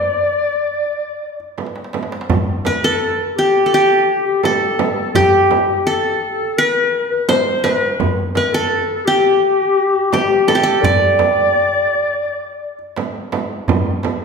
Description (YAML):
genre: Turkish makam ensemble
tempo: 84 BPM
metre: 4/4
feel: straight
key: D makam hicaz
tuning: A4 = 440 Hz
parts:
  - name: qanun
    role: melody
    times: 0.0-12.9 s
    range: G4 to D5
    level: -16 LUFS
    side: right 1 dB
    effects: none
  - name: breathy clarinet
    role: second line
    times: 0.0-13.0 s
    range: G4 to D5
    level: -18 LUFS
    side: left 4 dB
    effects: none
  - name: darbuka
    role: percussion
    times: 0.1-14.2 s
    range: none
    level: -24 LUFS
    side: right 1 dB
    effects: none
  - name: frame drum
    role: percussion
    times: 1.6-14.2 s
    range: none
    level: -21 LUFS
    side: right 5 dB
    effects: none
room: wet recital hall reverb, RT60 1.7 s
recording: heard from further back in the room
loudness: -14 LUFS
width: side -5 dB against mid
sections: 0.0-2.3 A section; 2.3-13.7 B section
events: drum fill 1.6-2.3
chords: none